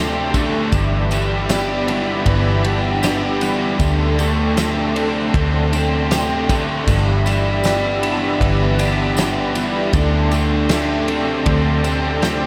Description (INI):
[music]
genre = rock, shoegaze and dream pop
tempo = 78 BPM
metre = 4/4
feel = straight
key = G major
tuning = A4 = 443 Hz
[part]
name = warm analog pad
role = sustained chords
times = 0.0-12.5 s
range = G4 to C6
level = -27 LUFS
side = equal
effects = chorus
[part]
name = twelve-string electric guitar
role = arpeggios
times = 0.0-12.5 s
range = E3 to G4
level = -28 LUFS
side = equal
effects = ensemble chorus, diffuse ambient delay
[part]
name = biting overdriven guitar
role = riff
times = 0.0-12.5 s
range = G2 to G4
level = -26 LUFS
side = equal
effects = reverse reverb
[part]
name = overdriven electric guitar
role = riff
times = 0.0-12.5 s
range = G2 to G4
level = -28 LUFS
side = equal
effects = subtle chorus
[part]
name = raw garage guitar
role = riff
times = 0.0-12.5 s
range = G2 to D4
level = -27 LUFS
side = equal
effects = overdrive, analog chorus
[part]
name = vintage muted picked electric bass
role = bass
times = 0.0-12.5 s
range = G1 to D2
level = -23 LUFS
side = equal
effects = none
[part]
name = loose indie drum kit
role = drums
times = 0.3-12.4 s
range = crash cymbal, kick drum, ride cymbal, snare drum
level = -26 LUFS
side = equal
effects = none
[part]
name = tambourine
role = percussion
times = 0.4-12.4 s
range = none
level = -37 LUFS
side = equal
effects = none
[sound]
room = wet lush hall reverb, RT60 3.0 s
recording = dreamy mix soaked in reverb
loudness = -18 LUFS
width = mono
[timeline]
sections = 0.0-12.5 A section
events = none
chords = 0.0 D7sus4; 0.7 G6; 3.8 D7sus4; 6.9 G6; 9.9 D7sus4